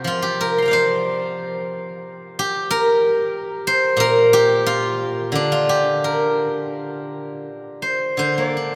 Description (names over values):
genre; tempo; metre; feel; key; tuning
chinese traditional, Chinese solo plucked strings; 80-95 BPM; 4/4; rubato; G yu mode; A4 = 441 Hz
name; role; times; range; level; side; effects
steel-string zither; solo; 0.0-8.8 s; Bb2 to C6; -20 LUFS; equal; none
room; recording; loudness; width
wet cathedral reverb, RT60 5.6 s; in a vast, echoing space; -19 LUFS; mono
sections
0.0-8.8 A section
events
none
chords
none